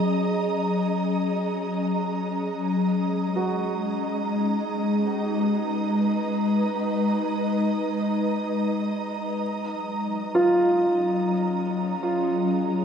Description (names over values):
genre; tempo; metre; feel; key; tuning
ambient; free time; none; none; G# dorian; A4 = 440 Hz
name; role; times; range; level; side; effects
ethereal airy pad; sustained chords; 0.0-12.8 s; F#3 to A#5; -24 LUFS; left 1 dB; ensemble chorus, built-in reverb
dark symphonic violin section; texture; 0.0-12.8 s; D#5 to D#6; -35 LUFS; right 1 dB; none
felt-muted upright piano; arpeggios; 3.4-12.8 s; E#4 to F#4; -25 LUFS; right 1 dB; tape echo
room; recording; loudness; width
wet echo chamber reverb, RT60 2.4 s; echo-heavy mix; -22 LUFS; side -7 dB against mid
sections
0.0-12.8 A section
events
fade-in on felt piano 0.0-12.8; fade-out on violin section 0.0-12.8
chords
0.0 F#; 2.7 G#m7; 9.4 F#maj7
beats
free time